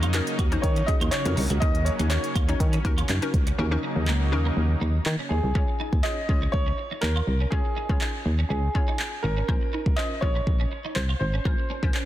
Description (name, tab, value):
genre	dance-pop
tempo	122 BPM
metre	4/4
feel	straight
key	Db major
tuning	A4 = 444 Hz
part	warm baby grand piano	melody	0.0-12.1 s	Ab4 to Eb5	-31 LUFS	right 1 dB	digital delay
part	lush unison pad	sustained chords	0.0-5.5 s	Db3 to Eb4	-33 LUFS	equal	chorus, sidechain pumping
part	twelve-string electric guitar	riff	0.0-12.0 s	Bb3 to Gb4	-36 LUFS	right 3 dB	ensemble chorus
part	solid FM bass	bass	0.0-11.9 s	Ab1 to Eb3	-25 LUFS	equal	sidechain pumping
part	deep house drum kit	drums	0.0-12.1 s	handclaps, hi-hat, kick drum	-26 LUFS	equal	none
part	hollow square pluck	accompaniment	0.1-12.1 s	Db4 to Db5	-34 LUFS	left 3 dB	chorus, sidechain pumping
part	group handclap	percussion	0.1-3.2 s	none	-40 LUFS	right 4 dB	none
room	light reverb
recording	dense, heavily limited modern master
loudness	-22 LUFS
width	side -13 dB against mid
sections	0.0-3.6 A section; 3.6-5.6 B section; 5.6-12.1 C section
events	kick muted 3.6-5.6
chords	0.0 Ebm7; 5.6 Db; 9.5 Bbmadd9